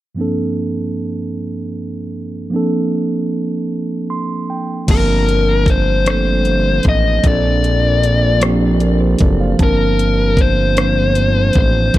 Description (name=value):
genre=slow six-eight R&B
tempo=51 BPM (dotted quarters)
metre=6/8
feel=straight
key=unclear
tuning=A4 = 439 Hz
part: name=mellow tine electric piano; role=accompaniment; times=0.1-12.0 s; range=G2 to C6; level=-18 LUFS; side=right 2 dB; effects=none
part: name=fuzz lead guitar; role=melody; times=4.9-12.0 s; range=Bb4 to Eb5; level=-18 LUFS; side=left 3 dB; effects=distortion, tape echo
part: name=fat analog bass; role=bass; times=4.9-12.0 s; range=Gb1 to Bb1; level=-16 LUFS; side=equal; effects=none
part: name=smooth R&B drum kit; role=drums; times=4.9-12.0 s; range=crash cymbal, hi-hat, kick drum, rim click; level=-16 LUFS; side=equal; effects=none
room=digital ambience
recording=dark, warm production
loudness=-13 LUFS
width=side -15 dB against mid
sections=0.2-4.9 A section; 4.9-12.0 B section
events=tine electric piano fill 3.7-4.9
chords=0.2 Gm11; 2.5 Bbmaj9; 4.9 Gm11; 7.2 Bbmaj9; 9.6 Gm11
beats=| 0.18 1.35 | 2.53 3.71 | 4.88 6.06 | 7.24 8.41 | 9.59 10.77 | 11.94